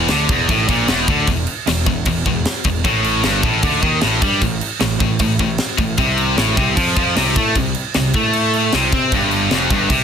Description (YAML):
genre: heavy metal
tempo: 153 BPM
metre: 4/4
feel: straight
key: E phrygian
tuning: A4 = 440 Hz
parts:
  - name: heavy high-gain guitar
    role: riff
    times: 0.0-10.0 s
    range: E2 to C4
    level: -19 LUFS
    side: left 12 dB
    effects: distortion
  - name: high-gain distorted guitar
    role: riff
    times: 0.0-10.0 s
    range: E2 to C4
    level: -20 LUFS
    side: right 10 dB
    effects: distortion
  - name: fuzz picked electric bass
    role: bass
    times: 0.0-10.0 s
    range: E1 to C3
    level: -22 LUFS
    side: equal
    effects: overdrive
  - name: tight metal drum kit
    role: drums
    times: 0.1-10.0 s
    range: crash cymbal, kick drum, snare drum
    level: -19 LUFS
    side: equal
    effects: soft clipping on kick
room: light reverb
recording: dense, heavily limited modern master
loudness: -14 LUFS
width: side -7 dB against mid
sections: 0.0-10.0 A section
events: none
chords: 0.0 E7sus4; 2.8 Gsus2; 6.0 Am; 9.1 Fsus2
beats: 0.10 0.49 0.88 | 1.28 1.67 2.06 2.46 | 2.85 3.24 3.63 4.03 | 4.42 4.81 5.20 5.59 | 5.99 6.38 6.77 7.16 | 7.56 7.95 8.34 8.73 | 9.12 9.51 9.90